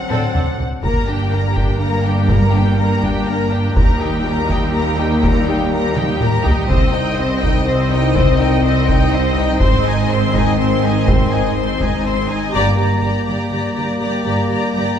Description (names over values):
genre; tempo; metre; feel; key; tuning
cinematic, epic orchestral film score; 123 BPM; 3/4; straight; G phrygian; A4 = 440 Hz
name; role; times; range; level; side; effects
rich studio violin section; melody; 0.0-15.0 s; Eb5 to C6; -24 LUFS; left 3 dB; none
mellow French horn section; sustained chords; 0.0-15.0 s; Eb3 to C4; -22 LUFS; left 3 dB; none
clear symphonic violin section; second line; 0.1-15.0 s; D4 to Eb5; -24 LUFS; left 2 dB; none
rich symphonic viola section; accompaniment; 0.1-15.0 s; Bb3 to G4; -24 LUFS; right 1 dB; none
rich chamber double bass section; bass; 0.1-14.8 s; G1 to Eb2; -21 LUFS; right 2 dB; none
rich symphonic cello section; bass; 0.1-14.8 s; C2 to D3; -22 LUFS; right 2 dB; none
taiko ensemble; drums; 0.1-13.5 s; none; -20 LUFS; equal; none
room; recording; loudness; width
wet scoring stage reverb, RT60 1.8 s; recorded in a church or concert hall; -14 LUFS; side -9 dB against mid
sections
0.8-12.5 A section; 12.5-15.0 B section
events
drum fill 0.1-0.8, 6.0-6.7; band accent 12.5-13.0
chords
0.0 D7; 0.8 Gm; 3.8 Eb; 6.7 Cm; 9.6 Ab; 12.5 Gm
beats
0.35 | 0.84 1.32 1.81 | 2.30 2.79 3.28 | 3.76 4.25 4.74 | 5.23 5.71 6.20 | 6.69 7.18 7.67 | 8.15 8.64 9.13 | 9.62 10.11 10.59 | 11.08 11.57 12.06 | 12.54 13.03 13.52 | 14.01 14.50 14.98